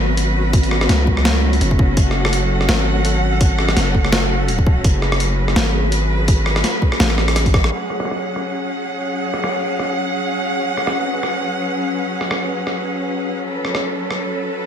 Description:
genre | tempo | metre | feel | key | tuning
half-time drum and bass | 167 BPM | 4/4 | swing 56% on 16ths, half-time | F# minor | A4 = 439 Hz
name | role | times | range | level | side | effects
bright symphonic cello section | sustained chords | 0.0-14.7 s | F#3 to F#5 | -22 LUFS | equal | sidechain pumping
long sustained 808-style bass | bass | 0.0-7.7 s | F#1 to C#2 | -18 LUFS | equal | none
pulsing gated texture | texture | 0.0-14.7 s | A3 to C#5 | -26 LUFS | left 1 dB | chorus, built-in reverb
boom bap sampler-style drum kit | drums | 0.2-14.2 s | hi-hat, rim click, snare drum | -21 LUFS | equal | low-pass filter on snare, low-pass filter on hats, low-pass filter on toms, low-pass filter on cymbals, low-pass filter on room
electronic kick drum | drums | 0.5-7.6 s | none | -15 LUFS | equal | none
room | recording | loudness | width
light reverb, digital ambience | none | -16 LUFS | side -8 dB against mid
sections
0.0-7.7 A section; 7.7-14.7 B section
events
drop 0.0-7.7; drum fill 7.0-7.7; filter sweep on drum 7.7-14.7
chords
0.0 F#5

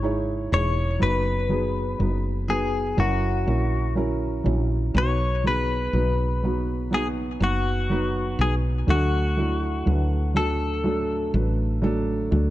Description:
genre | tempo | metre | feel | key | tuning
pop ballad | 61 BPM | 4/4 | straight | unclear | A4 = 440 Hz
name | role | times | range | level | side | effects
direct-recorded clean electric guitar | melody | 0.0-11.3 s | F#4 to C#5 | -27 LUFS | left 4 dB | none
felt-muted upright piano | accompaniment | 0.0-12.5 s | B2 to C#5 | -26 LUFS | right 2 dB | none
woody fretless electric bass | bass | 0.0-12.5 s | E1 to D2 | -24 LUFS | equal | none
room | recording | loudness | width
small room ambience | dark, warm production | -21 LUFS | side -15 dB against mid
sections
0.0-12.5 A section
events
none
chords
0.0 C#madd9; 1.0 B/F#; 3.0 F#7; 4.9 B; 8.9 D

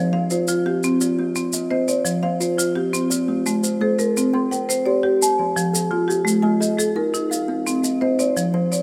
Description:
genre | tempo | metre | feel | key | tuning
southern african traditional, mbira-style interlocking cycle | 114 BPM (dotted quarters) | 12/8 | straight | F equiheptatonic | A4 = 441 Hz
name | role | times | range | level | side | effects
kalimba | arpeggios | 0.0-8.8 s | F3 to Ab5+43c | -26 LUFS | equal | none
marimba with hard mallets | arpeggios | 0.0-8.8 s | F3 to C6 | -22 LUFS | equal | tape echo
maracas | percussion | 0.3-8.8 s | none | -28 LUFS | equal | none
room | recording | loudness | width
light reverb, small room ambience | rough home demo mix | -20 LUFS | mono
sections
0.0-8.4 A section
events
none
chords
0.0 F5; 1.0 Cm; 2.1 F5; 3.1 Ab; 4.2 C5; 5.2 Fm; 6.3 Ab5; 7.3 Cm

